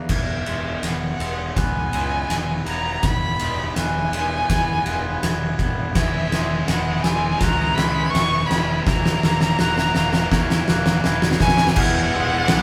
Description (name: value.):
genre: post-rock.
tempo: 82 BPM.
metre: 4/4.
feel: straight.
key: E lydian.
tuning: A4 = 440 Hz.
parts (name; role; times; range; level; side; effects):
glockenspiel with rubber mallets; arpeggios; 0.0-12.6 s; E6 to G#6; -34 LUFS; equal; none.
twangy electric guitar; arpeggios; 0.0-12.6 s; E2 to C#4; -34 LUFS; equal; spring reverb.
fuzz picked electric bass; bass; 0.0-12.6 s; E1 to E2; -30 LUFS; equal; overdrive.
warm violin; melody; 0.1-12.6 s; E5 to C#6; -27 LUFS; equal; none.
oversized low-tuned drum kit; drums; 0.1-12.6 s; crash cymbal, kick drum, ride cymbal, snare drum; -23 LUFS; equal; none.
distorted electric guitar; riff; 6.0-12.6 s; E3 to E4; -30 LUFS; equal; overdrive.
biting overdriven guitar; riff; 11.8-12.6 s; E3 to E4; -29 LUFS; equal; none.
room: wet studio reverb, RT60 0.5 s.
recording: band playing live in one room.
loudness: -20 LUFS.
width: mono.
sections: 0.1-11.8 A section.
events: build-up 0.1-11.8; drum fill 0.1-11.8.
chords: 0.1 E; 6.0 C#m/E; 8.9 F#/E; 11.8 E.